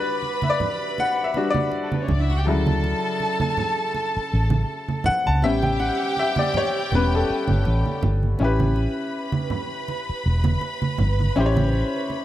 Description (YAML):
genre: lush 1970s-style soul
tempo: 81 BPM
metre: 4/4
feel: swing 54% on 16ths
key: unclear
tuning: A4 = 440 Hz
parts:
  - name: rich studio string section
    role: second line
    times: 0.0-12.2 s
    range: A3 to B5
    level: -27 LUFS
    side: right 1 dB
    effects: none
  - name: clear grand piano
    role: accompaniment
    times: 0.0-12.2 s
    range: C#3 to A5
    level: -24 LUFS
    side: left 3 dB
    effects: none
  - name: congas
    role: percussion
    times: 0.2-12.2 s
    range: none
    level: -26 LUFS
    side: right 3 dB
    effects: none
  - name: vintage muted fingered electric bass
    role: bass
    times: 2.1-11.8 s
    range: E1 to D2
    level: -21 LUFS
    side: equal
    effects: none
room: light reverb, studio reverb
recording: none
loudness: -20 LUFS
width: side -13 dB against mid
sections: 0.0-8.4 A section; 8.4-12.2 B section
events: grand piano solo 0.0-8.4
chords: 0.0 Em7; 2.5 Dmaj7; 5.4 A9